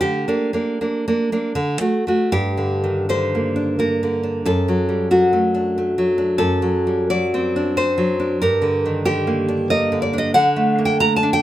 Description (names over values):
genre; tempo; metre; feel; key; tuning
romantic piece for solo classical guitar; 74-94 BPM; 3/4; rubato; G minor; A4 = 436 Hz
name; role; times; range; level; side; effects
nylon-string guitar; solo; 0.0-11.4 s; F#2 to Bb5; -17 LUFS; equal; none
room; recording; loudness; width
moderate studio reverb, RT60 0.6 s; rough home demo mix; -17 LUFS; side -13 dB against mid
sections
0.0-2.3 A section; 2.3-11.4 B section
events
none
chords
0.0 Gm/D; 1.6 D; 2.3 Gm; 4.4 D/F#; 6.4 D7/F#; 8.4 Gm; 10.3 D5